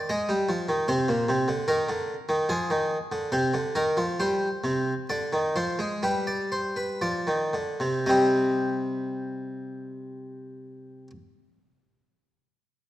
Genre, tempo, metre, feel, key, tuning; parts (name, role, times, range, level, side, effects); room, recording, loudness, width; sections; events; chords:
classical, baroque-style two-part invention for harpsichord; 56-76 BPM; 4/4; straight; C minor; A4 = 440 Hz
harpsichord; solo; 0.0-11.1 s; Bb2 to Eb5; -24 LUFS; equal
moderate scoring stage reverb, RT60 1.6 s; dark, warm production; -24 LUFS; side -14 dB against mid
0.0-8.1 A section; 8.1-12.4 B section
slowing down 0.0-8.1
0.0 Cm (rootless); 0.9 Bbadd9; 2.5 Fm; 4.2 G7sus4; 6.0 G7; 8.1 Cm